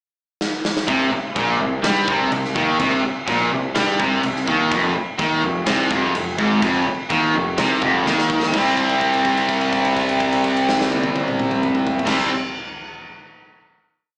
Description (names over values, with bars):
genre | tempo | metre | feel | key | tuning
hard rock | 126 BPM | 4/4 | straight | unclear | A4 = 445 Hz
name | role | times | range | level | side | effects
big rock drum kit | drums | 0.4-12.2 s | crash cymbal, kick drum, snare drum, toms | -28 LUFS | equal | none
cranked stack guitar | riff | 0.9-12.3 s | F2 to C4 | -23 LUFS | equal | overdrive, slapback echo
tight distorted guitar | riff | 0.9-12.3 s | F2 to C4 | -25 LUFS | equal | distortion, slapback echo
fuzz picked electric bass | bass | 0.9-12.3 s | F1 to G2 | -26 LUFS | equal | overdrive
room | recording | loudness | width
light reverb, studio ambience | live gig heard through the venue's PA, club reverb, small speaker sound | -19 LUFS | mono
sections
0.0-0.9 pickup bar; 0.9-8.5 riff; 8.5-12.4 final chord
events
drum fill 0.4-0.9, 8.1-8.5; held note 8.5-12.1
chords
0.0 N.C.; 0.9 C5; 4.7 F5; 8.5 C5